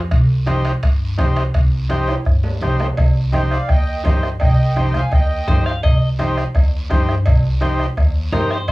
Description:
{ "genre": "latin, cumbia", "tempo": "168 BPM", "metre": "4/4", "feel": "straight", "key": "C minor", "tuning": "A4 = 438 Hz", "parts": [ { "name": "upright bass", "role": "bass", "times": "0.0-8.7 s", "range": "C2 to G2", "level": "-18 LUFS", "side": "equal", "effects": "none" }, { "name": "bombo", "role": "percussion", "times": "0.1-8.7 s", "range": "none", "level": "-18 LUFS", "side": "equal", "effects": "none" }, { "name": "congas", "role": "percussion", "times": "0.1-8.7 s", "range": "none", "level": "-28 LUFS", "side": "equal", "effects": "none" }, { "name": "guiro", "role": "percussion", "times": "0.1-8.7 s", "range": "none", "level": "-40 LUFS", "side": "right 4 dB", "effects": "none" }, { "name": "timbales and cowbell", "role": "percussion", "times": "0.1-8.7 s", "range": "none", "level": "-30 LUFS", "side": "right 3 dB", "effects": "none" }, { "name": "overdriven combo organ", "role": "accompaniment", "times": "0.5-8.6 s", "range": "Eb4 to C5", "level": "-22 LUFS", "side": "left 1 dB", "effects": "cassette tape" }, { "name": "accordion", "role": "melody", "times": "3.3-5.6 s", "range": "C5 to Ab5", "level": "-24 LUFS", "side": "right 2 dB", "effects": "light tremolo tuning, cassette tape" }, { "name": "electric guitar at the edge of break-up", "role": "second line", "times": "5.5-6.1, 8.3-8.7 s", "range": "Bb4 to F5", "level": "-25 LUFS", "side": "left 3 dB", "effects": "cassette tape" } ], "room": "little or no reverb", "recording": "home recording on cassette, small room ambience", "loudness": "-14 LUFS", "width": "side -20 dB against mid", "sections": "0.0-3.0 A section; 3.0-8.7 B section", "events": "drum fill 2.1-3.0", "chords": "0.1 Cm", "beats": "| 0.12 0.47 0.83 1.19 | 1.55 1.91 2.26 2.62 | 2.98 3.33 3.69 4.05 | 4.41 4.76 5.12 5.48 | 5.83 6.19 6.55 6.90 | 7.26 7.62 7.97 8.33 | 8.69" }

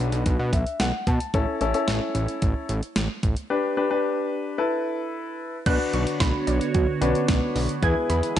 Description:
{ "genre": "synth-pop", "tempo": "111 BPM", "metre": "4/4", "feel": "straight", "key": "unclear", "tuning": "A4 = 440 Hz", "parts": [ { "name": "warm grand piano", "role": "accompaniment", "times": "0.0-8.4 s", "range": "C#4 to A5", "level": "-26 LUFS", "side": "left 3 dB", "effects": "none" }, { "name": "fat analog bass", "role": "bass", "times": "0.0-8.4 s", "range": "A1 to B2", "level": "-25 LUFS", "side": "equal", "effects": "none" }, { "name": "clean 12-bit digital drum machine", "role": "drums", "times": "0.1-8.4 s", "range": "crash cymbal, hi-hat, kick drum, snare drum", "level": "-26 LUFS", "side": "equal", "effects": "none" }, { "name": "phased analog pad", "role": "sustained chords", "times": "5.7-8.4 s", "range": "D3 to C#5", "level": "-28 LUFS", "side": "right 4 dB", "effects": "phaser, chorus" }, { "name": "warbly dusty pluck", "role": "arpeggios", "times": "5.7-8.4 s", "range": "D3 to G#6", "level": "-29 LUFS", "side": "right 6 dB", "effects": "chorus, phaser, slapback echo" } ], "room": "light reverb", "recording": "dark, warm production, nothing above 10.8 kHz", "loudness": "-22 LUFS", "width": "side -11 dB against mid", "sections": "0.0-5.7 A section; 5.7-8.4 B section", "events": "grand piano fill 0.3-1.3", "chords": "0.0 Bm; 1.3 A; 3.5 G; 4.6 Esus4; 5.7 Bmadd9; 7.8 E", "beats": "0.26 0.80 | 1.34 1.88 2.42 2.96 | 3.50 4.04 4.58 5.12 | 5.66 6.20 6.75 7.29 | 7.83 8.37" }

